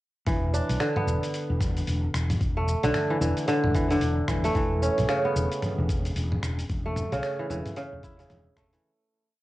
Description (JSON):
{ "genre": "organic downtempo", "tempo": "112 BPM", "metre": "4/4", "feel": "swing 60% on 16ths", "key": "unclear", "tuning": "A4 = 442 Hz", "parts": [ { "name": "kora", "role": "arpeggios", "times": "0.3-9.4 s", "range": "C#3 to E4", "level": "-27 LUFS", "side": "equal", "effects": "cassette tape, analog delay" }, { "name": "fretless electric bass", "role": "bass", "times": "0.3-8.8 s", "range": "E1 to B1", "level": "-28 LUFS", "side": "equal", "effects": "analog chorus, sidechain pumping" }, { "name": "dusty soul sampler-style drum kit", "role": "drums", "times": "0.3-8.8 s", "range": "finger snaps, hi-hat, shaker, toms", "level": "-33 LUFS", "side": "equal", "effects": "cassette tape" }, { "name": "electronic kick drum", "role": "drums", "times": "0.3-8.7 s", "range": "none", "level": "-29 LUFS", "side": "equal", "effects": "cassette tape" } ], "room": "moderate studio reverb, RT60 0.5 s", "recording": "home recording on cassette, nothing above 10.8 kHz", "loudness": "-24 LUFS", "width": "side -16 dB against mid", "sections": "0.3-8.8 groove", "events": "fade-out 6.0-8.8", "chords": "0.3 E7sus4; 4.6 Esus4" }